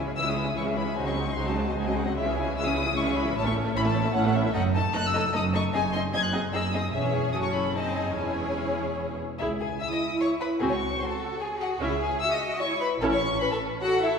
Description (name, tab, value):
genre	quick classical-period movement for string orchestra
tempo	150 BPM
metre	3/4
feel	straight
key	C# minor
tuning	A4 = 443 Hz
part	warm chamber violin section	melody	0.0-14.2 s	E5 to G#6	-30 LUFS	left 4 dB	none
part	rich chamber violin section	second line	0.0-14.2 s	E4 to E5	-30 LUFS	left 2 dB	none
part	rich studio viola section	accompaniment	0.0-13.2 s	E3 to G#4	-31 LUFS	right 1 dB	none
part	rich chamber double bass section	bass	0.0-13.3 s	E1 to C#2	-33 LUFS	right 3 dB	none
part	rich studio cello section	bass	0.0-14.2 s	E2 to A4	-31 LUFS	right 2 dB	none
room	wet concert hall reverb, RT60 2.3 s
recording	heard from further back in the room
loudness	-24 LUFS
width	side -6 dB against mid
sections	0.0-9.4 A section; 9.4-14.2 A section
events	none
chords	0.0 C#m; 1.0 G#7/C#; 2.2 C#m; 3.4 A; 4.6 D#dim/F#; 5.7 G#7/F#; 6.9 C#m/E; 7.3 F#m; 7.7 G#7/F#; 8.2 C#m/E; 9.4 C#m; 10.6 G#7/C#; 11.8 C#m; 13.0 A